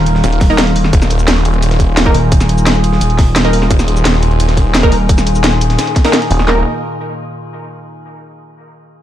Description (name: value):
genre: dark technical drum and bass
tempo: 173 BPM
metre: 4/4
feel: straight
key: unclear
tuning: A4 = 438 Hz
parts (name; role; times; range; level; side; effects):
- metallic inharmonic drone; sustained chords; 0.0-6.6 s; Bb2 to Bb4; -19 LUFS; equal; chorus, built-in reverb, sidechain pumping
- pulsing pluck wobble bass; bass; 0.0-5.8 s; Eb1; -13 LUFS; equal; chorus, tube saturation
- breakbeat sampler-style drum kit; drums; 0.1-6.5 s; hi-hat, ride cymbal, snare drum; -22 LUFS; equal; high-pass filter on cymbals, high-pass filter on snare, high-pass filter on hats, high-pass filter on room
- drum and bass drum kit; drums; 0.1-6.5 s; cabasa, hi-hat, snare drum; -16 LUFS; equal; none
- snarling distorted saw bass; bass; 0.2-6.6 s; Eb1; -13 LUFS; equal; distortion, sidechain pumping
- drum and bass drum kit; drums; 0.4-6.6 s; handclaps, kick drum, snare drum; -12 LUFS; equal; none
- orchestra-hit-like synth stab; stabs; 0.5-6.6 s; Bb3 to Bb4; -20 LUFS; right 1 dB; built-in reverb, cassette tape, dub echo
room: little or no reverb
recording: none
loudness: -9 LUFS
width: side -12 dB against mid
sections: 0.0-6.5 A section; 6.5-7.9 B section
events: drop 0.0-6.5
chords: 0.0 Eb5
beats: 0.24 0.58 | 0.93 1.28 1.62 1.97 | 2.32 2.67 3.01 3.36 | 3.71 4.05 4.40 4.75 | 5.09 5.44 5.79 6.13 | 6.48